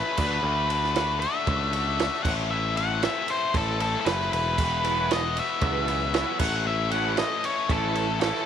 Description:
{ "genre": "indie rock", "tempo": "116 BPM", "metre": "4/4", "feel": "straight", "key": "unclear", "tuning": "A4 = 440 Hz", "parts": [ { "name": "octave-fuzz lead guitar", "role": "melody", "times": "0.0-8.5 s", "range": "A4 to F#5", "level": "-27 LUFS", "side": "equal", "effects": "distortion, tape echo" }, { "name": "distorted electric guitar", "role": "riff", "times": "0.0-8.5 s", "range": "E2 to F#4", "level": "-29 LUFS", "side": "left 13 dB", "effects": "overdrive" }, { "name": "picked electric bass", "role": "bass", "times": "0.2-8.3 s", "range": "E1 to D2", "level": "-29 LUFS", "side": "equal", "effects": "none" }, { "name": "compact cocktail drum kit", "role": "drums", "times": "0.2-8.4 s", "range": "crash cymbal, kick drum, ride cymbal, snare drum", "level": "-30 LUFS", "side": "right 5 dB", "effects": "none" }, { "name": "raw garage guitar", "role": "riff", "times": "4.8-8.5 s", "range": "E3 to E4", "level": "-33 LUFS", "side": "right 13 dB", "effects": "overdrive, ensemble chorus" } ], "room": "light reverb, small room ambience", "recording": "1960s-style stereo with parts hard left and right", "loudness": "-23 LUFS", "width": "side -8 dB against mid", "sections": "0.0-8.5 A section", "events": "none", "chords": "0.2 D; 2.2 Am; 4.6 Esus2; 6.4 A" }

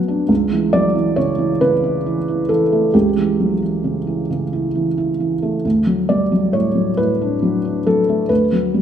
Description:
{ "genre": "neoclassical minimalist piano", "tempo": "45 BPM (dotted quarters)", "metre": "6/8", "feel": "rubato", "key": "unclear", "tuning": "A4 = 440 Hz", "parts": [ { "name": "felt-muted upright piano", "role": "solo", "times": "0.0-8.8 s", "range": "C#2 to D5", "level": "-15 LUFS", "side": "right 1 dB", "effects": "none" } ], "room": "wet recital hall reverb, RT60 1.3 s", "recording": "recorded in a church or concert hall", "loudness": "-15 LUFS", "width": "side -9 dB against mid", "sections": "0.0-8.8 A section", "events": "none", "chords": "0.3 A7/C#; 5.6 D6" }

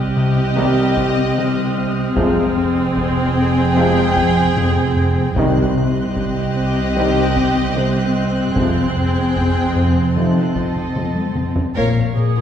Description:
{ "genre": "cinematic, suspense film score", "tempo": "75 BPM", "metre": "4/4", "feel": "straight", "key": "unclear", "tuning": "A4 = 438 Hz", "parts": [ { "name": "dark studio violin section", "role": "melody", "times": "0.0-12.4 s", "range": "Bb4 to G5", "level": "-27 LUFS", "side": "left 4 dB", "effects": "none" }, { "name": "dark chamber violin section", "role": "second line", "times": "0.0-12.4 s", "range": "F4 to Db5", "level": "-24 LUFS", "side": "right 2 dB", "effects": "none" }, { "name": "warm chamber viola section", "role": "accompaniment", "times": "0.0-12.4 s", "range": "C4 to Ab4", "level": "-22 LUFS", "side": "left 2 dB", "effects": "none" }, { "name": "dark chamber double bass section", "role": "bass", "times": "0.0-12.2 s", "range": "F1 to C2", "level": "-23 LUFS", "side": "right 3 dB", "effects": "none" }, { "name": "dark studio cello section", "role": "bass", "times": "0.0-12.4 s", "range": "C2 to Bb2", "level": "-24 LUFS", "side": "right 3 dB", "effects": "none" }, { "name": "dark concert grand piano", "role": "texture", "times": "0.0-2.2, 7.8-10.2 s", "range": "C5", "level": "-33 LUFS", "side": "left 2 dB", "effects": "none" }, { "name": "dark studio violin section", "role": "texture", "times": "0.0-12.4 s", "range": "C6 to F#6", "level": "-32 LUFS", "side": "left 2 dB", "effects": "none" }, { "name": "smooth gliding synth bass", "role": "riff", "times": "0.2-12.4 s", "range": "F2 to C4", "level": "-21 LUFS", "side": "left 2 dB", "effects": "none" }, { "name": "clear trombone section", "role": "sustained chords", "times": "0.6-10.5 s", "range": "C3 to F3", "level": "-26 LUFS", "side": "right 2 dB", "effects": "none" }, { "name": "mellow French horn section", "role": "sustained chords", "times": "0.6-10.4 s", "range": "G3 to Ab4", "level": "-26 LUFS", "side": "left 1 dB", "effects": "none" }, { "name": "solo taiko drums", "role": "drums", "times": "1.0-11.9 s", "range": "none", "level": "-27 LUFS", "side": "equal", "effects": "none" }, { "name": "timpani", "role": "percussion", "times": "5.4-6.5 s", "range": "C3", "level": "-26 LUFS", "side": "equal", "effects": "none" } ], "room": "wet scoring stage reverb, RT60 1.9 s", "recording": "heard from further back in the room", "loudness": "-15 LUFS", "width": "side -9 dB against mid", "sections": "0.0-11.8 A section", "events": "drum fill 11.0-11.8; band accent 11.8-12.4", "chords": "0.0 Cm; 2.2 Fmadd9; 5.4 Cm; 8.6 Fmadd9; 10.2 F7; 11.8 Bbm" }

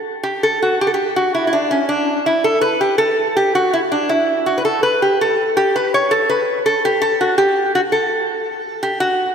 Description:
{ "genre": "medieval", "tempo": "109 BPM (dotted quarters)", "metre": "6/8", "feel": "straight", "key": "A mixolydian", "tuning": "A4 = 440 Hz", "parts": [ { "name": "metal-body resonator slide guitar", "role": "solo", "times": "0.2-9.3 s", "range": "C#4 to C#5", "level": "-15 LUFS", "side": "equal", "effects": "diffuse ambient delay" } ], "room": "wet lush hall reverb, RT60 2.9 s", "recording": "dreamy mix soaked in reverb", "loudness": "-14 LUFS", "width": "side -7 dB against mid", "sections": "0.2-9.0 A section", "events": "none", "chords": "none" }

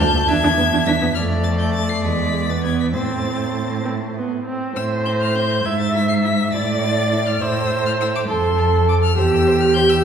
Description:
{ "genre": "quick classical-period movement for string quartet", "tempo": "68 BPM (dotted quarters)", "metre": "6/8", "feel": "straight", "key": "A minor", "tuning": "A4 = 440 Hz", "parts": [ { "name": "rich violin", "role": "melody", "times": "0.0-10.0 s", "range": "C6 to C7", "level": "-25 LUFS", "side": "left 6 dB", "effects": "none" }, { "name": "rich violin", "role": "second line", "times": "0.0-9.8 s", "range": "C4 to A5", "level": "-28 LUFS", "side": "left 1 dB", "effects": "none" }, { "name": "rich viola", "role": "accompaniment", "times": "0.0-10.0 s", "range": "G#3 to E5", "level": "-20 LUFS", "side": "right 2 dB", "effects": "none" }, { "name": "rich cello", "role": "bass", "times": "0.0-9.9 s", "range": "D2 to A2", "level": "-20 LUFS", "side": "right 1 dB", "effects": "none" } ], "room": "wet concert hall reverb, RT60 1.7 s", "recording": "heard from further back in the room", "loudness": "-16 LUFS", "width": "side -7 dB against mid", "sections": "0.0-4.8 A section; 4.8-10.0 A section", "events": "none", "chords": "0.3 E7; 1.2 F; 2.0 E; 3.0 Am; 5.7 E/G#; 6.5 Am; 8.3 F; 9.2 C/E (rootless)" }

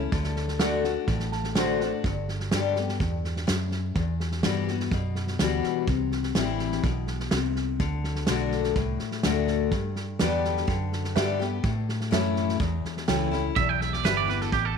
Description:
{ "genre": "honky-tonk and classic country", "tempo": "125 BPM", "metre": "4/4", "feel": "straight", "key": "G major", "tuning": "A4 = 441 Hz", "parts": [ { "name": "twangy electric guitar", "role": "second line", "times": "0.0-0.3, 13.6-14.8 s", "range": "G4 to A5", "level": "-26 LUFS", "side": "right 14 dB", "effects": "tape echo" }, { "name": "picked steel-string acoustic guitar", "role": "accompaniment", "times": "0.0-14.8 s", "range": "E2 to G4", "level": "-28 LUFS", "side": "left 12 dB", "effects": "none" }, { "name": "vintage muted fingered electric bass", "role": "bass", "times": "0.0-14.8 s", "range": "G1 to A2", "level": "-30 LUFS", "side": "right 2 dB", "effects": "none" }, { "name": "natural country drum kit", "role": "drums", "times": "0.1-14.6 s", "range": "hi-hat, kick drum, snare drum", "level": "-29 LUFS", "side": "right 2 dB", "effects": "none" }, { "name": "clear upright piano", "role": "accompaniment", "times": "0.6-2.0, 10.2-14.4 s", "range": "F#4 to A5", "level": "-34 LUFS", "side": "right 13 dB", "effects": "none" } ], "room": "light reverb", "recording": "1960s-style stereo with parts hard left and right", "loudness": "-24 LUFS", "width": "side -6 dB against mid", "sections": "0.0-2.0 A section; 2.0-14.8 B section", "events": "upright piano fill 1.1-2.0", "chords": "0.1 D; 2.0 G; 4.0 Emadd9; 5.9 C; 7.8 D; 9.7 G; 11.6 A; 13.6 Em" }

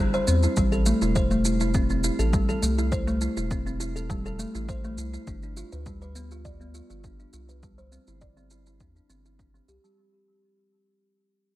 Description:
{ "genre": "organic downtempo", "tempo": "102 BPM", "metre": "4/4", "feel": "straight", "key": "A minor", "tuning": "A4 = 440 Hz", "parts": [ { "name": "kalimba", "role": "arpeggios", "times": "0.0-9.9 s", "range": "G3 to D5", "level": "-27 LUFS", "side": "equal", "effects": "low-pass filter, digital delay" }, { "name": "round analog bass", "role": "bass", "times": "0.0-9.8 s", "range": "E1 to E2", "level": "-27 LUFS", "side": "equal", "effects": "sidechain pumping" }, { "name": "shaker", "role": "drums", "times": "0.1-10.0 s", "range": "none", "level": "-33 LUFS", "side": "right 1 dB", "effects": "overdrive" }, { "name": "electronic kick drum", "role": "drums", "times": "0.6-9.5 s", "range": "none", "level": "-29 LUFS", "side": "equal", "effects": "overdrive" } ], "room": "light reverb, digital ambience", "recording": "none", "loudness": "-23 LUFS", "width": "side -15 dB against mid", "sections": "0.0-10.0 A section", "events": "fade-out 0.0-10.0; filter sweep on kalimba 0.0-10.0", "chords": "0.0 C; 0.6 Am; 5.3 G7; 7.6 Cadd9" }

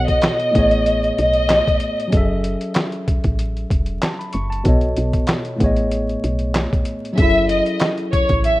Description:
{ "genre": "hip hop, boom-bap hip-hop", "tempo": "95 BPM", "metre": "4/4", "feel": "swing 54% on 16ths", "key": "F# dorian", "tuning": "A4 = 441 Hz", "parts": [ { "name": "warm symphonic violin section", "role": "melody", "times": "0.0-2.1, 7.2-8.6 s", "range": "C#5 to E5", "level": "-18 LUFS", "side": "equal", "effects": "high-pass filter, low-pass filter, tape echo" }, { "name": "barky tine electric piano", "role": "accompaniment", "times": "0.0-8.6 s", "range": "A2 to C#6", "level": "-22 LUFS", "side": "equal", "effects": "overdrive, cassette tape, high-pass filter, low-pass filter" }, { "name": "woody FM bass", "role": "bass", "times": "0.0-8.6 s", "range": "E1 to B1", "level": "-22 LUFS", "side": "equal", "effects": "none" }, { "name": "boom bap sampler-style drum kit", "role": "drums", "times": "0.1-8.6 s", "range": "handclaps, hi-hat, kick drum, snare drum", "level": "-19 LUFS", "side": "equal", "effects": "vintage 12-bit sampler grit" } ], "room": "digital ambience", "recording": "rough home demo mix, vinyl crackle", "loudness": "-16 LUFS", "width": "side -17 dB against mid", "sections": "0.0-8.6 A section", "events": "none", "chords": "0.0 B7; 0.5 Amaj9#11; 2.1 F#m7; 4.7 B7; 5.6 Amaj9#11; 7.2 F#m7" }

